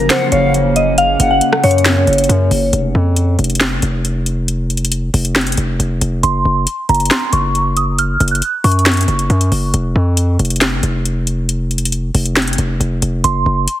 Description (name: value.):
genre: hip hop, trap.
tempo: 137 BPM.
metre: 4/4.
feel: half-time.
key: unclear.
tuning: A4 = 441 Hz.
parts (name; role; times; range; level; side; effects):
soft synth bell; melody; 0.0-2.7, 6.2-9.7, 13.2-13.7 s; C5 to Gb6; -16 LUFS; equal; chorus, low-pass filter, tape echo.
felt-muted upright piano; accompaniment; 0.0-2.8 s; Db3 to Bb4; -23 LUFS; right 4 dB; none.
warbly tape-like pad; sustained chords; 0.0-2.7 s; Db3 to Db4; -22 LUFS; right 1 dB; chorus, built-in reverb.
distorted 808-style bass; bass; 0.0-13.7 s; F1 to Gb2; -15 LUFS; equal; distortion.
silver concert flute; second line; 0.1-1.4 s; F5 to Gb5; -25 LUFS; left 2 dB; tape echo.
trap drum kit; drums; 0.1-13.8 s; finger snaps, hi-hat, rim click, snare drum; -17 LUFS; left 1 dB; none.
room: little or no reverb.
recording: heavily compressed radio sound, multiband compression.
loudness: -12 LUFS.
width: side -13 dB against mid.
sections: 0.0-2.7 A section; 2.7-13.8 B section.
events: break 2.7-6.2.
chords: 0.0 Gbmaj7; 2.7 N.C.; 6.2 Gb5; 9.7 N.C.; 13.2 Gb5.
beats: 0.10 0.54 | 0.98 1.42 1.85 2.29 | 2.73 3.17 3.61 4.04 | 4.48 4.92 5.36 5.80 | 6.23 6.67 7.11 7.55 | 7.99 8.42 8.86 9.30 | 9.74 10.18 10.61 11.05 | 11.49 11.93 12.37 12.80 | 13.24 13.68.